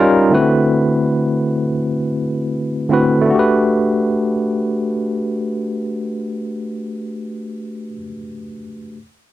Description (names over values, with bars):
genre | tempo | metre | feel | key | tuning
R&B | 76-85 BPM | 4/4 | swing 54% on 16ths | G major | A4 = 440 Hz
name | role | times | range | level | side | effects
barky tine electric piano | accompaniment | 0.0-9.0 s | D3 to B4 | -16 LUFS | equal | medium stereo tremolo
room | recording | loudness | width
moderate small room reverb, RT60 0.5 s | none | -15 LUFS | side -14 dB against mid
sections
0.0-3.3 A section; 3.3-6.5 B section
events
slowing down 0.0-3.3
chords
0.3 D13; 3.3 Gmaj9